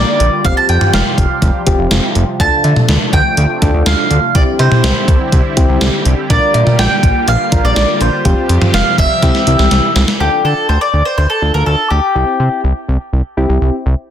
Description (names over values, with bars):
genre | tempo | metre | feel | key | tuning
synth-pop | 123 BPM | 4/4 | straight | D minor | A4 = 440 Hz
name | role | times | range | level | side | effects
mandolin | melody | 0.0-12.6 s | G4 to A5 | -15 LUFS | equal | tape echo
soft electric-piano-like synth keys | accompaniment | 0.0-13.8 s | C4 to Bb4 | -20 LUFS | left 2 dB | chorus
lush unison pad | sustained chords | 0.0-10.2 s | C3 to G4 | -20 LUFS | equal | chorus, phaser
fat analog bass | bass | 0.0-14.0 s | F1 to D3 | -13 LUFS | equal | none
gated 80s digital drum machine | drums | 0.2-10.2 s | cowbell, hi-hat, kick drum, snare drum, toms | -14 LUFS | equal | gated reverb, gated reverb snare
room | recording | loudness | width
light reverb, digital ambience | dense, heavily limited modern master | -10 LUFS | side -9 dB against mid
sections
0.0-10.2 A section; 10.2-14.1 B section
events
drum fill 9.2-10.2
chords
0.4 Fsus2; 2.4 Dm7; 4.3 Cadd9; 6.3 Bb6; 8.3 Fsus2; 9.2 C; 10.2 Dm; 12.2 C